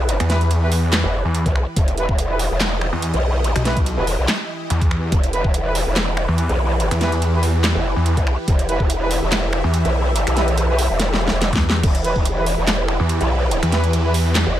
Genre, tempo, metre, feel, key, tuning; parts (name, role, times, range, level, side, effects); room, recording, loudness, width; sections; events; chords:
heavy wobble dubstep; 143 BPM; 4/4; swing 54% on 16ths, half-time; E harmonic minor; A4 = 441 Hz
supersaw pad; sustained chords; 0.0-14.6 s; E3 to E5; -26 LUFS; equal; phaser, sidechain pumping
growl bass; bass; 0.0-14.6 s; E1 to B1; -20 LUFS; equal; chorus, overdrive
dubstep drum kit; drums; 0.1-14.4 s; crash cymbal, finger snaps, handclaps, hi-hat, snare drum; -23 LUFS; equal; small room reverb
snarling distorted saw bass; bass; 0.2-14.4 s; B1 to E2; -18 LUFS; equal; distortion, overdrive
mellow brass ensemble; stabs; 0.3-14.1 s; E4 to B4; -26 LUFS; right 2 dB; ping-pong delay
electronic kick drum; drums; 1.5-5.5, 8.2-8.9, 11.5-12.2 s; -18 LUFS; equal; small room reverb
little or no reverb; -16 LUFS; side -12 dB against mid
0.0-14.6 A section
drum fill 11.0-11.8
0.0 Em